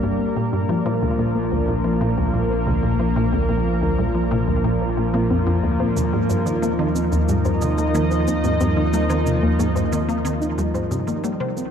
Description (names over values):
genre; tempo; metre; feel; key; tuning
ambient, sequencer-driven space music; 91 BPM; 4/4; straight; unclear; A4 = 435 Hz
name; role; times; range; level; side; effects
lush unison pad; sustained chords; 0.0-11.7 s; Eb3 to Eb5; -22 LUFS; equal; chorus
soft round pluck; arpeggios; 0.0-11.7 s; C3 to C5; -28 LUFS; left 1 dB; chorus, auto-pan, analog delay
resonant blip pluck; riff; 0.0-11.5 s; D2 to Bb3; -23 LUFS; equal; chorus, analog delay
round analog bass; bass; 0.0-11.7 s; G1 to Eb2; -26 LUFS; equal; none
cabasa and congas; percussion; 6.0-11.7 s; none; -38 LUFS; right 4 dB; analog delay
room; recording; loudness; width
moderate huge ambient reverb, RT60 8.6 s; dark, warm production; -18 LUFS; side -8 dB against mid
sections
0.0-11.7 A section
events
filter sweep on synth arpeggio sound 0.0-11.7; fade-out 9.5-11.7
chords
0.0 Gm; 0.7 Bb; 6.0 Ebsus2